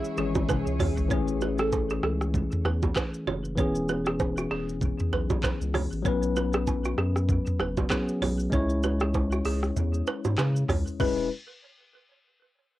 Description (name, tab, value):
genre	afrobeats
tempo	97 BPM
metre	4/4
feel	swing 58% on 16ths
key	E major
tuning	A4 = 436 Hz
part	breathy tenor saxophone	melody	0.0-0.5 s	E4	-43 LUFS	equal	none
part	bright tine electric piano	accompaniment	0.0-11.3 s	E3 to C#5	-29 LUFS	left 3 dB	auto-pan, cassette tape
part	granular cloud pad	sustained chords	0.0-1.1 s	G#4 to C#6	-38 LUFS	right 3 dB	built-in reverb, cassette tape
part	afro-pop drum kit	drums	0.0-11.2 s	crash cymbal, handclaps, hi-hat, kick drum, rim click, shaker, toms	-30 LUFS	equal	none
part	balafon	riff	0.2-11.1 s	F#4 to C#5	-33 LUFS	right 4 dB	cassette tape, tape echo
part	round analog bass	bass	0.2-11.3 s	E1 to C#3	-30 LUFS	equal	none
part	bongos and congas	percussion	0.4-11.3 s	none	-33 LUFS	right 5 dB	none
room	light reverb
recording	home recording on cassette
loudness	-24 LUFS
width	side -15 dB against mid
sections	0.0-1.1 A section; 1.1-11.0 B section; 11.0-12.8 C section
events	drum fill 0.5-1.1; kick muted 9.8-11.0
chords	0.0 C#m; 1.1 Amaj7; 3.6 E6; 6.1 Bsus2; 8.5 C#m; 11.0 E6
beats	0.48 | 1.10 1.72 2.34 2.96 | 3.58 4.20 4.81 5.43 | 6.05 6.67 7.29 7.91 | 8.53 9.14 9.76 10.38 | 11.00